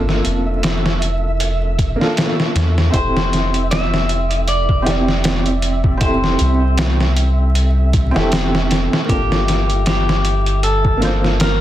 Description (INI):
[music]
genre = trip hop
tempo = 78 BPM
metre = 4/4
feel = swing 56% on 16ths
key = G dorian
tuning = A4 = 438 Hz
[part]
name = felt-muted upright piano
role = accompaniment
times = 0.0-11.6 s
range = Bb3 to D5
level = -22 LUFS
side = right 1 dB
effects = tremolo, low-pass filter, tape echo
[part]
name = soft dub sub bass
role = bass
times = 0.0-11.6 s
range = F1 to E2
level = -18 LUFS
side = equal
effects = none
[part]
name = flickering grainy texture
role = texture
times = 0.0-11.6 s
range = E5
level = -29 LUFS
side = right 2 dB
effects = built-in reverb
[part]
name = trip hop sampler-style drum kit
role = drums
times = 0.1-11.6 s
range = hi-hat, kick drum, snare drum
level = -19 LUFS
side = equal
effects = none
[part]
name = clean electric guitar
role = melody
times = 2.9-11.6 s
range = G4 to E5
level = -22 LUFS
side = left 2 dB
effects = vintage 12-bit sampler grit, tape echo
[sound]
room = light reverb, digital ambience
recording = dense, heavily limited modern master, vinyl crackle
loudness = -14 LUFS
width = side -13 dB against mid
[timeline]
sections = 0.0-11.6 A section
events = none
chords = 0.0 Gm7 (rootless); 2.9 Fmaj7; 9.1 Gm7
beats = 0.63 1.40 2.17 | 2.94 3.71 4.48 5.25 | 6.02 6.79 7.55 8.32 | 9.09 9.86 10.63 11.40